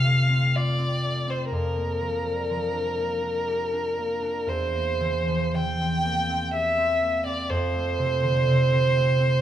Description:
classical, romantic duo for violin and harp; 61 BPM; 3/4; rubato; F major; A4 = 440 Hz
rich violin; melody; 0.0-9.4 s; Bb4 to G5; -24 LUFS; right 1 dB
concert harp; accompaniment; 0.0-9.4 s; E2 to G4; -25 LUFS; equal
wet recital hall reverb, RT60 1.6 s; -22 LUFS; side -11 dB against mid
0.0-9.4 A section
0.0 F; 1.5 Gm7/F; 4.5 C7/E; 7.5 F

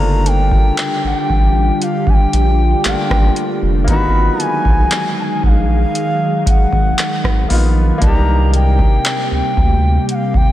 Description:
contemporary R&B; 58 BPM; 4/4; straight; A4 = 440 Hz
reedy bansuri; melody; 0.0-10.5 s; F5 to Cb6; -20 LUFS; left 1 dB; tape echo
bright grand piano; accompaniment; 0.0-10.5 s; A3 to G4; -24 LUFS; left 2 dB
glassy FM pad; sustained chords; 0.0-10.5 s; C3 to D5; -20 LUFS; equal; ensemble chorus, built-in reverb
round analog bass; bass; 0.0-10.4 s; F1 to Eb2; -15 LUFS; equal
booming analog drum machine; drums; 0.3-10.5 s; handclaps, hi-hat, kick drum, rim click; -16 LUFS; equal; overdrive
moderate lush hall reverb, RT60 2.6 s; dreamy mix soaked in reverb; -12 LUFS; side -14 dB against mid
0.0-10.5 A section
0.0 Gm7; 3.9 Abm7; 8.0 Cm7

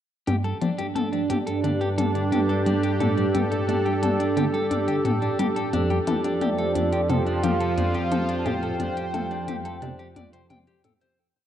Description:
ambient, sequencer-driven space music; 88 BPM; 4/4; straight; A4 = 439 Hz
sweeping resonant pad; sustained chords; 0.3-11.2 s; F3 to C5; -26 LUFS; right 2 dB; chorus
clean electric guitar; arpeggios; 0.3-11.2 s; D4 to G5; -32 LUFS; left 2 dB; auto-pan, ping-pong delay
tight sequenced synth; riff; 0.3-10.9 s; F2 to A3; -29 LUFS; equal; chorus, ping-pong delay
analog drone; bass; 1.0-11.2 s; F2 to G2; -30 LUFS; equal; chorus
minimal click drum kit; percussion; 0.3-11.2 s; hi-hat, toms; -30 LUFS; left 4 dB; ping-pong delay
soft octave-layered synth lead; melody; 6.4-10.5 s; D5 to A5; -29 LUFS; equal; chorus, tremolo, ping-pong delay
wet concert hall reverb, RT60 2.5 s; worn, warbling old tape, cassette tape, warbly pitch drift; -22 LUFS; side -10 dB against mid
0.3-11.2 A section
fade-out 7.5-11.2
0.3 Gsus2; 5.7 Fadd9

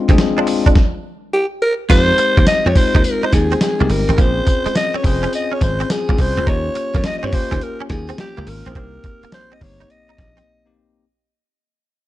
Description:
R&B, new jack swing; 105 BPM; 4/4; swing 67% on 16ths; F minor; A4 = 440 Hz
bell-like tine electric piano; accompaniment; 0.0-11.1 s; Ab3 to Bb4; -22 LUFS; left 6 dB
direct-recorded clean electric guitar; riff; 0.1-10.4 s; Ab3 to F4; -25 LUFS; right 4 dB; ensemble chorus
dry thumbed slap bass; bass; 0.1-10.4 s; F1 to G2; -19 LUFS; equal
dusty soul sampler-style drum kit; drums; 0.1-10.5 s; crash cymbal, hi-hat, kick drum, snare drum, tambourine; -16 LUFS; equal
growling alto saxophone; melody; 1.3-10.8 s; G4 to Eb5; -19 LUFS; equal
little or no reverb; dark, warm production; -14 LUFS; side -15 dB against mid
0.0-1.9 A section; 1.9-11.0 B section
stop 0.8-1.9; fade-out 1.9-11.0; break 10.5-11.0
0.0 Bb7 (rootless); 0.8 N.C.; 1.9 Fm7; 4.2 Bbm9; 6.5 Eb7; 8.8 Cm7

